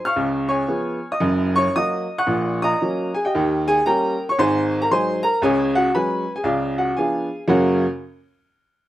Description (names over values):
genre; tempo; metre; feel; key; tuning
jazz, stride piano; 114 BPM; 4/4; swing 65% on 8ths; F# major; A4 = 437 Hz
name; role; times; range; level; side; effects
clear baby grand piano; solo; 0.0-7.9 s; F#1 to F#6; -18 LUFS; equal; none
room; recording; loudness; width
light reverb; recorded outdoors, with no room sound; -18 LUFS; side -14 dB against mid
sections
0.0-7.5 A section; 7.5-8.9 B section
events
none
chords
0.2 C#7; 1.2 F#; 2.3 F#/A#; 3.3 D#7; 4.4 G#7; 5.4 C#7sus4; 6.5 C#7b9; 7.5 F#